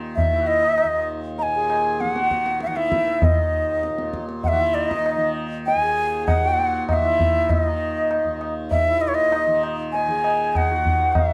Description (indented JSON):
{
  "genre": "indian classical, Hindustani",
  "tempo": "98 BPM",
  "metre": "7/4",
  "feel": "straight",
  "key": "Eb raga bhairavi",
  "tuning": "A4 = 442 Hz",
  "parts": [
    { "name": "tanpura", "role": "drone", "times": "0.0-11.3 s", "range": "Eb2 to Eb3", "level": "-32 LUFS", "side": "equal", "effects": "none" },
    { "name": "bright reedy bansuri", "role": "melody", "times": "0.2-11.3 s", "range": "Db5 to Bb5", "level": "-23 LUFS", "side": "equal", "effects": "plate reverb" },
    { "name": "tabla", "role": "percussion", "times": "0.2-11.3 s", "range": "none", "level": "-26 LUFS", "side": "equal", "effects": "none" },
    { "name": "hand-pumped harmonium", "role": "second line", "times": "0.3-11.3 s", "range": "Eb4 to Ab4", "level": "-32 LUFS", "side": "equal", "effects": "none" }
  ],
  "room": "moderate studio reverb, RT60 0.6 s",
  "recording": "dark, warm production",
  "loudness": "-21 LUFS",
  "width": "mono",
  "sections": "0.0-11.3 A section",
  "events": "none",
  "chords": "none"
}